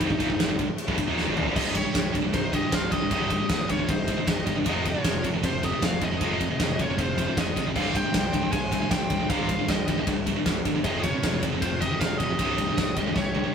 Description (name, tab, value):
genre	heavy metal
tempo	155 BPM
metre	4/4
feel	straight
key	C phrygian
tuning	A4 = 443 Hz
part	high-gain lead guitar	melody	0.0-13.5 s	Eb4 to Ab5	-31 LUFS	left 1 dB	distortion
part	heavy high-gain guitar	riff	0.0-13.5 s	C2 to F3	-31 LUFS	right 5 dB	distortion
part	tight distorted guitar	riff	0.0-13.5 s	C2 to F3	-30 LUFS	left 4 dB	distortion
part	fuzz picked electric bass	bass	0.0-13.4 s	C1 to Bb1	-33 LUFS	equal	overdrive
part	big rock drum kit	drums	0.0-13.4 s	crash cymbal, kick drum, ride cymbal, snare drum, toms	-27 LUFS	equal	none
part	high-gain lead guitar	second line	1.6-13.5 s	Eb4 to C5	-38 LUFS	right 2 dB	distortion
room	light reverb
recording	rough rehearsal-room recording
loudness	-23 LUFS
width	side -7 dB against mid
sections	0.0-1.6 A section; 1.6-13.5 B section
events	drum fill 1.2-1.6, 13.2-13.5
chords	0.0 Cm; 4.7 Fm; 7.8 C5; 10.8 F5; 12.4 C5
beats	| 0.01 0.39 0.78 1.17 | 1.56 1.95 2.34 2.73 | 3.11 3.50 3.89 4.28 | 4.66 5.05 5.43 5.82 | 6.21 6.60 6.98 7.37 | 7.75 8.14 8.53 8.91 | 9.30 9.69 10.07 10.46 | 10.85 11.23 11.62 12.01 | 12.39 12.78 13.17